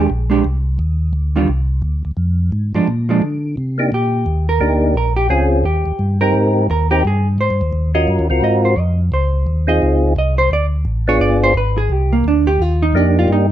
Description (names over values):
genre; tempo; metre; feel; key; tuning
soul jazz organ trio; 173 BPM; 4/4; swing 63% on 8ths; Eb major, C minor from 3.6 s; A4 = 441 Hz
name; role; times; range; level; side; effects
percussive tonewheel organ; melody; 0.0-0.1, 3.8-13.5 s; Bb3 to Bb4; -17 LUFS; left 1 dB; slow rotary speaker
hollow-body jazz guitar; accompaniment; 0.0-13.5 s; Eb3 to Eb5; -18 LUFS; right 3 dB; none
mellow tonewheel organ; bass; 0.0-13.5 s; G1 to D3; -16 LUFS; equal; chorus vibrato
room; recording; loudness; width
little or no reverb; dark, warm production; -14 LUFS; side -11 dB against mid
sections
0.0-3.6 A section; 3.6-13.5 B section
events
hollow-body jazz guitar solo 3.6-13.5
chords
0.1 Bb13; 0.8 Ebmaj7(no3); 2.2 Fm; 2.9 Bb7; 3.6 Cm9; 5.0 Bbm9; 5.7 Eb6; 6.3 Abmaj9; 7.7 Ebm7; 8.4 Ab13; 9.1 Dbmaj9; 10.5 Dm; 11.2 G7b9; 11.9 Cm9